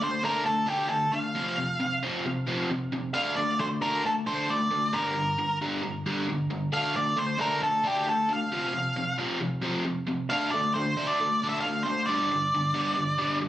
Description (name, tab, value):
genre	rock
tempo	134 BPM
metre	4/4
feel	straight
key	D minor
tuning	A4 = 440 Hz
part	octave-fuzz lead guitar	melody	0.0-13.4 s	G4 to F5	-27 LUFS	equal	distortion, tape echo
part	biting overdriven guitar	riff	0.0-13.5 s	F2 to D4	-29 LUFS	equal	none
room	moderate studio reverb, RT60 0.8 s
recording	recorded on a phone in the room, studio reverb, compression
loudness	-25 LUFS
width	side -13 dB against mid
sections	0.0-13.5 A section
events	none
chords	0.0 D5; 1.4 F5; 3.1 D5; 4.9 Gm; 6.7 D5; 8.5 F5; 10.3 D5; 12.1 G5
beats	0.01 0.46 0.91 | 1.35 1.80 2.25 2.69 | 3.14 3.59 4.04 4.48 | 4.93 5.38 5.82 6.27 | 6.71 7.16 7.61 8.05 | 8.50 8.95 9.39 9.84 | 10.29 10.73 11.18 11.62 | 12.07 12.52 12.96 13.41